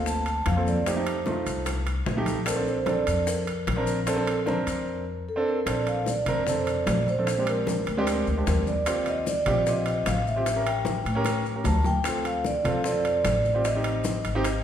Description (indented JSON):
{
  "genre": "Afro-Cuban jazz",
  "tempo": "150 BPM",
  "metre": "4/4",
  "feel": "straight",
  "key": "Bb major",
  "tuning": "A4 = 443 Hz",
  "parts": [
    { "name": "vibraphone with soft mallets", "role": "melody", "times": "0.0-14.6 s", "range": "A4 to A5", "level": "-28 LUFS", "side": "right 1 dB", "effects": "none" },
    { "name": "warm baby grand piano", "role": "accompaniment", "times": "0.0-14.5 s", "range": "Ab3 to Bb4", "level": "-29 LUFS", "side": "right 2 dB", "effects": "none" },
    { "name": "upright bass", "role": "bass", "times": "0.0-14.6 s", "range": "Ab1 to A2", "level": "-29 LUFS", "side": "left 1 dB", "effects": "none" },
    { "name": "bongos", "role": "percussion", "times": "0.1-14.6 s", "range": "none", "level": "-36 LUFS", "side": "left 4 dB", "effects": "none" },
    { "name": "congas", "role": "percussion", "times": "0.1-14.6 s", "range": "none", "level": "-35 LUFS", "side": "left 2 dB", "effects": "none" },
    { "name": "maracas", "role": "percussion", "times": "0.1-14.6 s", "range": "none", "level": "-40 LUFS", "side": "left 6 dB", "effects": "none" },
    { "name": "timbales", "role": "percussion", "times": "0.3-14.6 s", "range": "none", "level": "-35 LUFS", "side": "right 3 dB", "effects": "none" }
  ],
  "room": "wet recital hall reverb, RT60 1.4 s",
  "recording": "recorded in a church or concert hall",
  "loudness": "-23 LUFS",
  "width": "side -9 dB against mid",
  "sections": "0.0-5.7 A section; 5.7-14.6 B section",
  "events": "break 4.9-5.7; drum fill 11.3-12.1",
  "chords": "0.0 Gm11 (rootless); 0.9 F7; 2.5 Bbmaj9; 7.3 Bb13; 8.9 Eb69; 10.5 A7b9; 12.1 Dm7; 13.7 Am7b5",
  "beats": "0.06 0.46 | 0.86 1.27 1.67 2.07 | 2.47 2.87 3.27 3.67 | 4.07 4.47 4.87 5.27 | 5.67 6.07 6.47 6.87 | 7.27 7.67 8.07 8.47 | 8.87 9.27 9.67 10.06 | 10.46 10.86 11.26 11.66 | 12.06 12.46 12.86 13.25 | 13.65 14.05 14.45"
}